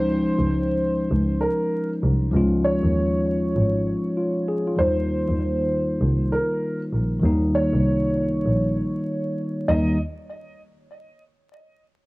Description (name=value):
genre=hip hop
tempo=98 BPM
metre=4/4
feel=swing 63% on 16ths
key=Eb mixolydian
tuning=A4 = 440 Hz
part: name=dark upright piano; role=melody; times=0.0-10.0 s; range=Bb4 to Eb5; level=-26 LUFS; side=right 1 dB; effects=high-pass filter, low-pass filter, plate reverb, tape echo
part: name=mellow tine electric piano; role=accompaniment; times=0.0-10.0 s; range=Eb3 to Ab4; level=-23 LUFS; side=left 1 dB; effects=high-pass filter, low-pass filter, cassette tape
part: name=dark double bass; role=bass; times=0.0-10.0 s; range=Ab1 to Eb2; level=-23 LUFS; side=equal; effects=none
room=moderate booth ambience, RT60 0.2 s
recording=home recording on cassette, vinyl crackle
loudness=-20 LUFS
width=side -22 dB against mid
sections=0.0-4.8 A section; 4.8-9.7 B section; 9.7-12.1 C section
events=none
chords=0.0 Dbadd9; 4.8 Eb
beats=0.50 1.11 1.72 | 2.33 2.95 3.56 4.17 | 4.78 5.40 6.01 6.62 | 7.23 7.84 8.46 9.07 | 9.68